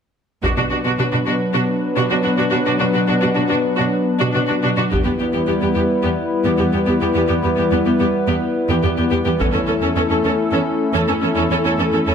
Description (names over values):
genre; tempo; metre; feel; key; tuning
cinematic, hybrid orchestral and electronic film score; 107 BPM; 4/4; straight; B minor; A4 = 440 Hz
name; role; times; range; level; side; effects
rich symphonic viola section; accompaniment; 0.4-12.1 s; B3 to A4; -20 LUFS; equal; none
hollow soft pad; sustained chords; 0.4-12.1 s; F#3 to B4; -19 LUFS; left 2 dB; chorus
rich symphonic cello section; bass; 0.4-12.1 s; E2 to B2; -22 LUFS; right 3 dB; none
taiko ensemble; drums; 0.4-1.5, 4.9-6.0, 9.4-10.5 s; none; -24 LUFS; equal; none
room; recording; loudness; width
moderate scoring stage reverb, RT60 1.6 s; none; -16 LUFS; side -7 dB against mid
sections
0.4-12.1 A section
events
build-up 0.4-12.1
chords
0.4 Bm; 4.9 Em; 9.4 A/E